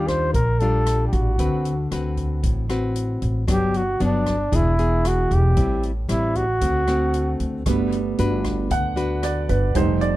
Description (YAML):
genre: bossa nova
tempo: 115 BPM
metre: 4/4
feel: straight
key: G major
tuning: A4 = 440 Hz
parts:
  - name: breathy flugelhorn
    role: melody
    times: 0.0-7.4 s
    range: D4 to C5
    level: -23 LUFS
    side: equal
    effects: none
  - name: nylon-string guitar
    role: accompaniment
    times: 0.0-10.2 s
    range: G2 to B4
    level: -25 LUFS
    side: left 2 dB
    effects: none
  - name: upright bass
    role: bass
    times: 0.0-10.2 s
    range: E1 to Eb2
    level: -23 LUFS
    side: equal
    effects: none
  - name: swinging big-band drum kit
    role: drums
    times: 0.1-10.1 s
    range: hi-hat, kick drum, rim click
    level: -28 LUFS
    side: equal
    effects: none
  - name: warm concert grand piano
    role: accompaniment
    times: 7.7-10.2 s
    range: G3 to F#5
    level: -23 LUFS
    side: right 6 dB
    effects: none
room: little or no reverb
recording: dark, warm production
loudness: -19 LUFS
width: side -16 dB against mid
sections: 0.0-7.7 A section; 7.7-10.2 B section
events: grand piano solo 7.7-10.2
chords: 0.0 Ebmaj9; 1.4 D6; 3.5 Gmaj7; 4.5 E7; 5.6 Am7; 6.6 D7; 7.7 Gmaj7